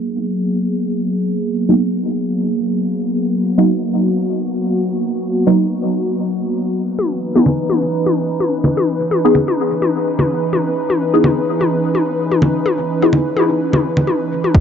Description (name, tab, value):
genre	dub techno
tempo	127 BPM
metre	4/4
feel	swing 56% on 16ths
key	unclear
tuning	A4 = 440 Hz
part	airy breathy pad	sustained chords	0.0-14.6 s	B2 to B4	-18 LUFS	equal	chorus, sidechain pumping
part	deep mellow chord stab	stabs	1.7-13.1 s	F#3 to G#4	-18 LUFS	equal	chorus, phaser, sidechain pumping, dub echo
part	electronic toms and congas	percussion	7.0-14.5 s	none	-17 LUFS	left 2 dB	overdrive, sidechain pumping on toms, sidechain pumping on perc, dub echo
part	electronic kick drum	drums	14.5-14.6 s	none	-6 LUFS	equal	none
room	light reverb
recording	dry, gritty hardware recording, low-pass filter, nothing above 7.8 kHz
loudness	-14 LUFS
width	side -8 dB against mid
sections	0.0-14.5 A section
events	filter sweep on analog synth pad 0.0-14.5; filter sweep 0.0-14.5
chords	0.0 G#m9; 7.0 C#m9